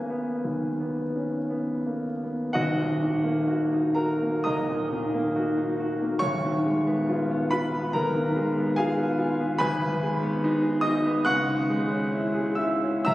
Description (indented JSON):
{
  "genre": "classical, romantic nocturne for solo piano",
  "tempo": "55-74 BPM",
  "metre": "4/4",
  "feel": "rubato",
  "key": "Eb minor",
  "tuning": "A4 = 439 Hz",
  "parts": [
    { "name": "warm grand piano", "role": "solo", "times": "0.0-13.1 s", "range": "Eb1 to F#6", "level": "-23 LUFS", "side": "equal", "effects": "none" }
  ],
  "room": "wet church reverb, RT60 3.6 s",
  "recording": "recorded on a phone in the room, club reverb",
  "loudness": "-23 LUFS",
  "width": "side -16 dB against mid",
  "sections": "0.0-2.6 A section; 2.6-13.1 B section",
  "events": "none",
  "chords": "0.0 G#m; 2.6 Ebm; 6.2 Fm7b5/Eb; 9.6 G#m; 11.3 C#m",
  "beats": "0.48 1.53 | 2.58 3.48 4.46 5.37 | 6.24 7.11 7.96 8.79 | 9.61 10.44 11.27 12.14 | 13.10"
}